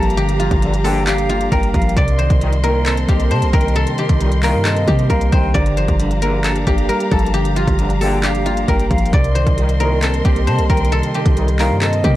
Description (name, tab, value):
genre	hip hop, trap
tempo	134 BPM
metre	4/4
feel	half-time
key	unclear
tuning	A4 = 440 Hz
part	guzheng	melody	0.0-12.2 s	F4 to D5	-21 LUFS	equal	low-pass filter
part	breathy hollow jazz flute	second line	0.0-12.2 s	Eb5 to Bb5	-26 LUFS	left 2 dB	tape echo
part	clean electric guitar	accompaniment	0.0-12.2 s	C3 to D4	-22 LUFS	right 1 dB	spring reverb, low-pass filter
part	warm symphonic string section	sustained chords	0.0-12.2 s	G4 to C6	-26 LUFS	equal	none
part	clean 808-style bass	bass	0.0-12.2 s	G1 to C3	-18 LUFS	equal	none
part	trap drum kit	drums	0.0-12.1 s	handclaps, hi-hat, kick drum	-20 LUFS	equal	none
part	mellow brass ensemble	stabs	0.6-11.9 s	Bb1 to Eb3	-25 LUFS	equal	none
room	studio reverb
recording	dry, gritty hardware recording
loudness	-14 LUFS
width	side -15 dB against mid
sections	0.0-12.2 A section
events	none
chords	0.0 Gm7; 2.0 Cm7; 5.5 Gm7; 9.1 Cm7